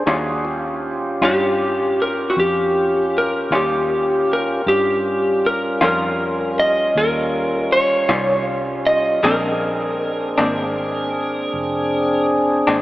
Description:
blues; 52 BPM (dotted quarters); 12/8; straight; A4 = 440 Hz
tonewheel organ; sustained chords; 0.0-12.8 s; G3 to Ab4; -22 LUFS; equal; slow rotary speaker
vintage muted fingered electric bass; bass; 0.0-12.8 s; F1 to G2; -31 LUFS; equal
electric guitar through a small old amp; accompaniment; 0.1-12.8 s; Bb2 to F4; -24 LUFS; left 1 dB; tremolo
electric slide guitar; melody; 1.2-12.3 s; Gb4 to Eb5; -18 LUFS; equal
wet cathedral reverb, RT60 5.2 s; dreamy mix soaked in reverb, small speaker sound; -16 LUFS; side -16 dB against mid
0.0-12.8 A section
0.1 Eb9; 9.2 Bb9

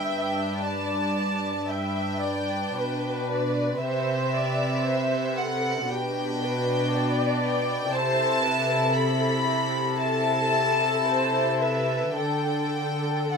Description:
classical, slow romantic movement for string orchestra; 52-60 BPM; 4/4; rubato; G major; A4 = 440 Hz
warm symphonic violin section; melody; 0.0-13.4 s; D5 to B5; -28 LUFS; left 1 dB
warm symphonic violin section; second line; 0.0-13.4 s; C4 to B4; -29 LUFS; left 1 dB
dark symphonic viola section; accompaniment; 0.0-13.4 s; G4 to E5; -30 LUFS; equal
warm symphonic cello section; bass; 0.0-13.4 s; G2 to D3; -29 LUFS; right 1 dB
light reverb; minimal, uncompressed stereo recording; -23 LUFS; side -5 dB against mid
0.0-13.4 A section
0.0 G; 3.8 Cmaj7; 5.9 G/B; 7.9 Am/C; 12.2 D5

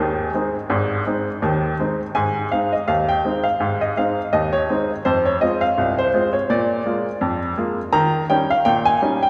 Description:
ragtime piano; 83 BPM; 2/4; swing 56% on 16ths; Ab major; A4 = 440 Hz
clear upright piano; solo; 0.0-9.3 s; Ab1 to Bb5; -20 LUFS; equal
wet church reverb, RT60 3.4 s; recorded in a church or concert hall; -20 LUFS; mono
0.0-2.2 A section; 2.2-9.3 B section
0.0 Ab; 5.0 Fm; 6.5 Bb7; 7.9 Eb7

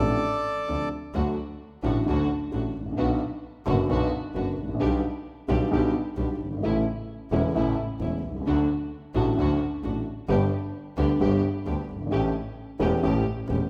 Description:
tango; 131 BPM; 4/4; rubato; D major; A4 = 440 Hz
bandoneon; melody; 0.0-0.9 s; A4 to D5; -30 LUFS; equal
dark upright piano; accompaniment; 0.0-13.7 s; E1 to G4; -29 LUFS; equal
clear double bass; bass; 0.0-13.7 s; E1 to D2; -31 LUFS; equal
dark symphonic string section; stabs; 1.1-13.7 s; A3 to G4; -37 LUFS; equal
moderate scoring stage reverb, RT60 1.9 s; recorded in a church or concert hall; -26 LUFS; mono
0.0-1.1 A section; 1.1-13.7 B section
0.0 Dm7; 1.1 D; 3.0 Bm; 4.8 G/B; 6.6 A; 8.5 D; 10.3 G; 12.1 A7

